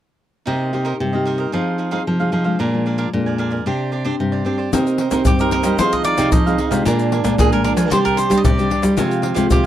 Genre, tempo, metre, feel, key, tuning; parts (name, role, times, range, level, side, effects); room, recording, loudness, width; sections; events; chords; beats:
samba and choro; 113 BPM; 4/4; straight; C minor; A4 = 441 Hz
cavaquinho; accompaniment; 0.5-9.7 s; D4 to Ab5; -26 LUFS; right 6 dB
nylon-string guitar; accompaniment; 0.5-9.7 s; F2 to Ab4; -22 LUFS; left 4 dB
nylon-string guitar; bass; 0.5-9.7 s; Bb2 to C4; -20 LUFS; right 1 dB
warm trombone; second line; 4.7-9.7 s; C4 to G4; -23 LUFS; right 9 dB
tube shaker, surdo and pandeiro; percussion; 4.7-9.6 s; -20 LUFS; left 2 dB
cavaquinho; melody; 5.3-9.7 s; G4 to Eb5; -20 LUFS; right 1 dB
light reverb; dry, close 1970s-style studio recording; -15 LUFS; side -12 dB against mid
0.5-4.7 A section; 4.7-9.7 B section
0.5 Cm7; 1.5 Fm7; 2.6 Bb7; 3.7 Csus2; 4.7 Cm7; 5.8 Fm7; 6.9 Bb7; 7.9 Csus2; 9.0 Fmadd9/C
| 0.47 1.00 1.53 2.07 | 2.60 3.13 3.66 4.19 | 4.73 5.26 5.79 6.32 | 6.85 7.38 7.92 8.45 | 8.98 9.51